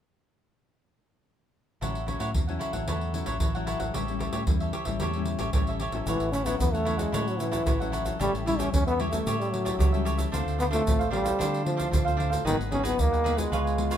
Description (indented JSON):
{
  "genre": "samba and choro",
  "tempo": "113 BPM",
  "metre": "4/4",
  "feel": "straight",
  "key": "A major",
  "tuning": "A4 = 441 Hz",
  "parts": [
    { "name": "cavaquinho", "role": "accompaniment", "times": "1.8-14.0 s", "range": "D4 to F#5", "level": "-33 LUFS", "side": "right 4 dB", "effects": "none" },
    { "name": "nylon-string guitar", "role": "accompaniment", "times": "1.8-14.0 s", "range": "G#2 to F4", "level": "-33 LUFS", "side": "left 6 dB", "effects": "none" },
    { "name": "deep dub fingered electric bass", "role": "bass", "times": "1.8-14.0 s", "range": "G#1 to D3", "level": "-31 LUFS", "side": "equal", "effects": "none" },
    { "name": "surdo, pandeiro and tube shaker", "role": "percussion", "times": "1.8-14.0 s", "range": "none", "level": "-30 LUFS", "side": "right 1 dB", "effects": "none" },
    { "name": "clear trombone", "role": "melody", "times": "6.1-14.0 s", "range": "D#3 to E4", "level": "-28 LUFS", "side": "equal", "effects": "none" }
  ],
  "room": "light reverb",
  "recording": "minimal, uncompressed stereo recording",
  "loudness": "-24 LUFS",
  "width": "side -9 dB against mid",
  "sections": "1.8-6.1 A section; 6.1-14.0 B section",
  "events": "none",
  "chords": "1.8 A6; 3.9 A7; 6.1 A6; 8.2 A7; 10.3 Dm7; 12.5 G#m7"
}